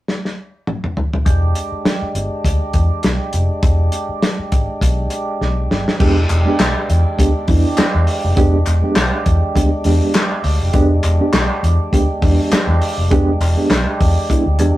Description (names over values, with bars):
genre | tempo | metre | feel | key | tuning
funk | 101 BPM | 4/4 | swing 56% on 16ths | unclear | A4 = 441 Hz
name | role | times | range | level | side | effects
warm soul drum kit | drums | 0.1-14.7 s | crash cymbal, handclaps, hi-hat, kick drum, snare drum, toms | -18 LUFS | equal | none
percussive tonewheel organ | sustained chords | 1.3-14.8 s | G#3 to G4 | -23 LUFS | right 2 dB | slow rotary speaker, overdrive
vintage muted fingered electric bass | bass | 1.3-14.7 s | E1 to E2 | -16 LUFS | equal | none
mellow reed electric piano | stabs | 6.0-14.8 s | G#3 to G4 | -18 LUFS | right 2 dB | fast tremolo
group handclap | percussion | 6.3-13.9 s | none | -27 LUFS | left 3 dB | none
room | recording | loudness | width
moderate studio reverb, RT60 0.6 s | rough rehearsal-room recording | -14 LUFS | side -16 dB against mid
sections
0.0-1.3 A section; 1.3-6.0 B section; 6.0-14.8 C section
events
drum fill 0.1-1.3, 5.4-6.0; reed electric piano fill 14.3-14.8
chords
0.0 N.C.; 1.3 E7#9